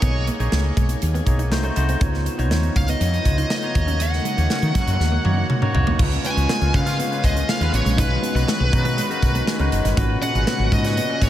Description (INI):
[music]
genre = polished 1980s jazz-funk pop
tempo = 121 BPM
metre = 4/4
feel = straight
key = unclear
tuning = A4 = 442 Hz
[part]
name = high-gain lead guitar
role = melody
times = 0.0-11.3 s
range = B4 to G#5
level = -26 LUFS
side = left 1 dB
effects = distortion, tape echo
[part]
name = barky tine electric piano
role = accompaniment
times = 0.0-11.3 s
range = A#2 to B5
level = -27 LUFS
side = left 1 dB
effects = overdrive, lush chorus
[part]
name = semi-hollow electric guitar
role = riff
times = 0.0-11.1 s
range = F#3 to F#4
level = -31 LUFS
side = right 3 dB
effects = none
[part]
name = woody fretless electric bass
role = bass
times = 0.0-11.3 s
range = F#1 to D#3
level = -21 LUFS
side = equal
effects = none
[part]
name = modern studio drum kit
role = drums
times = 0.0-11.3 s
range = crash cymbal, hi-hat, kick drum, snare drum, toms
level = -23 LUFS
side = equal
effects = none
[part]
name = warm analog pad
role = sustained chords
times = 2.0-11.3 s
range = A#2 to F#4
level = -30 LUFS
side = left 1 dB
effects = lush chorus
[part]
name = warm horn section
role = second line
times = 4.5-11.3 s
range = D#3 to B4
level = -36 LUFS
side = right 1 dB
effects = none
[sound]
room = moderate huge ambient reverb, RT60 8.1 s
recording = dreamy mix soaked in reverb, faint mains hum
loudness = -18 LUFS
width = side -12 dB against mid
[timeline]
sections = 0.0-6.0 A section; 6.0-11.3 B section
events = band accent 4.0-6.0; drum fill 5.0-6.0; tine electric piano fill 9.0-10.0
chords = 0.0 Bmaj13; 1.5 Cdim7; 2.0 C#9; 3.8 D#m7; 6.0 C#7; 8.0 B6; 10.0 G#m11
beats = | 0.02 0.52 1.02 1.51 | 2.01 2.51 3.01 3.50 | 4.00 4.50 5.00 5.50 | 5.99 6.49 6.99 7.49 | 7.98 8.48 8.98 9.47 | 9.97 10.47 10.97